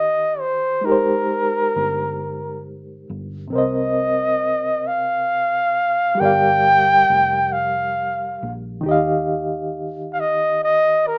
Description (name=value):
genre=R&B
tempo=45 BPM (dotted quarters)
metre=6/8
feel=straight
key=C minor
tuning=A4 = 440 Hz
part: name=breathy flugelhorn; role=melody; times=0.0-11.2 s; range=Bb4 to G5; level=-20 LUFS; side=equal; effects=none
part: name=reed electric piano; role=accompaniment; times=0.0-11.2 s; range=C3 to F5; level=-25 LUFS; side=equal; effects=fast tremolo
part: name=vintage muted fingered electric bass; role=bass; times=0.0-11.2 s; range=F1 to Eb2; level=-34 LUFS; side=equal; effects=none
room=moderate studio reverb, RT60 0.6 s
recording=rough home demo mix, small speaker sound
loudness=-19 LUFS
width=mono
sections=0.0-11.2 A section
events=none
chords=0.0 Ebadd9; 0.8 Abmaj9; 3.5 Cm7; 6.2 Gm7; 8.8 Ebadd9